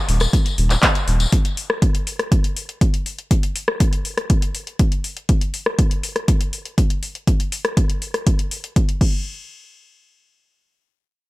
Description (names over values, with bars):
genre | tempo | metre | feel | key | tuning
acid house | 121 BPM | 4/4 | straight | unclear | A4 = 441 Hz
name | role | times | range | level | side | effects
round analog bass | bass | 0.1-1.3 s | Eb1 | -17 LUFS | equal | tube saturation, sidechain pumping
electro analog drum machine | drums | 0.1-9.1 s | crash cymbal, handclaps, hi-hat, rim click | -24 LUFS | left 1 dB | small room ambience
tambourine | percussion | 0.2-1.3 s | none | -28 LUFS | left 5 dB | analog delay
electronic kick drum | drums | 0.3-9.1 s | none | -17 LUFS | equal | overdrive, small room ambience
room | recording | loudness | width
little or no reverb | echo-heavy mix | -17 LUFS | side -20 dB against mid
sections
0.0-9.3 A section; 9.3-11.3 B section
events
none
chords
none